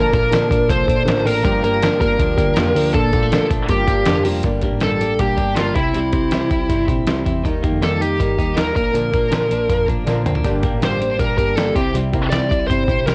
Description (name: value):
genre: jangly indie pop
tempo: 160 BPM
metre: 4/4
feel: straight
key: G minor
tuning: A4 = 439 Hz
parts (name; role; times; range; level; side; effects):
- high-gain lead guitar; melody; 0.0-13.1 s; E4 to D5; -22 LUFS; equal; distortion, cassette tape
- fingerpicked plugged-in steel-string acoustic guitar; accompaniment; 0.0-13.1 s; G2 to Bb4; -25 LUFS; equal; cassette tape
- warm analog keys; accompaniment; 0.0-4.5, 10.4-13.1 s; Bb3 to A5; -32 LUFS; equal; none
- twelve-string electric guitar; arpeggios; 0.0-13.1 s; G2 to A4; -27 LUFS; equal; cassette tape
- hollow-body short-scale picked electric bass; bass; 0.0-13.1 s; F1 to G2; -27 LUFS; equal; none
- dusty soul sampler-style drum kit; drums; 0.1-13.1 s; hi-hat, kick drum, snare drum, toms; -24 LUFS; equal; cassette tape
room: little or no reverb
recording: home recording on cassette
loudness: -18 LUFS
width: mono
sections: 0.0-4.4 A section; 4.4-13.1 B section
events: drum fill 10.1-10.4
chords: 0.0 Bbmaj7; 1.4 Gm7; 2.9 Bbmaj7; 3.7 Gm7; 4.4 Gm; 5.8 C; 7.4 Eb; 8.8 Bb; 10.4 Gm; 11.8 C